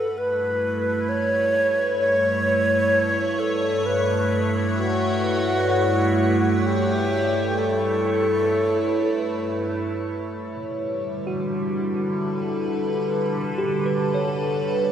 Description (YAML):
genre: ambient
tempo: free time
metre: none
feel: none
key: G lydian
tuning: A4 = 440 Hz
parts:
  - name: bright alto flute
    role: melody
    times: 0.0-9.4 s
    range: F#4 to C#5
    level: -22 LUFS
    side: equal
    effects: shimmer reverb, analog delay
  - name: evolving wavetable pad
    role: sustained chords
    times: 0.0-14.9 s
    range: G2 to C#5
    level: -22 LUFS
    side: equal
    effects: phaser, built-in reverb, shimmer reverb
  - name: tine electric piano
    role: arpeggios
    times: 11.3-14.9 s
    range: F#4 to C#5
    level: -28 LUFS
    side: equal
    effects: phaser, shimmer reverb, analog delay
room: wet lush hall reverb, RT60 3.0 s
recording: dreamy mix soaked in reverb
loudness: -20 LUFS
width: side -9 dB against mid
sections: 0.0-10.3 A section; 10.3-14.9 B section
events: none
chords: 0.0 A/G; 10.3 Gmaj7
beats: free time